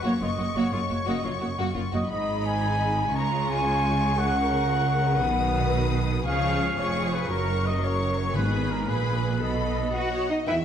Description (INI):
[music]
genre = cinematic, heroic adventure film score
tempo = 115 BPM (dotted quarters)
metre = 12/8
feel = straight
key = unclear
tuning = A4 = 440 Hz
[part]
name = warm symphonic violin section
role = melody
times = 0.0-10.6 s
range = D#5 to D#6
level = -34 LUFS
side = left 4 dB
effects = none
[part]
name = warm symphonic violin section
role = second line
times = 0.0-10.5 s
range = D#4 to G5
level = -34 LUFS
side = left 3 dB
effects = none
[part]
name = warm trumpet section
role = stabs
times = 0.0-10.3 s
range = A#4 to A#5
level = -28 LUFS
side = equal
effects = none
[part]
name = rich symphonic cello section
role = bass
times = 0.0-10.5 s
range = E#2 to F#4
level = -29 LUFS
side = right 2 dB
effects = none
[part]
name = rich symphonic double bass section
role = bass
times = 0.0-10.6 s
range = E#1 to E2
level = -29 LUFS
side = right 2 dB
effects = none
[part]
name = rich symphonic viola section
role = accompaniment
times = 0.1-10.5 s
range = D#3 to B4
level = -32 LUFS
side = equal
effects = none
[part]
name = timpani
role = percussion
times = 8.3-8.8 s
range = G#2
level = -32 LUFS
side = left 2 dB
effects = none
[part]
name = mellow clarinet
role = second line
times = 9.9-10.6 s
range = D#5 to F#5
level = -30 LUFS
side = left 1 dB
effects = none
[sound]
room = moderate scoring stage reverb, RT60 2.0 s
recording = none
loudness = -23 LUFS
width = side -8 dB against mid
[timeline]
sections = 0.0-10.5 A section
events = none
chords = 0.0 F#; 2.1 G#m; 3.1 C#; 4.2 F#add9/C#; 5.2 B; 6.3 C#; 7.3 F#; 8.3 G#m; 9.4 B7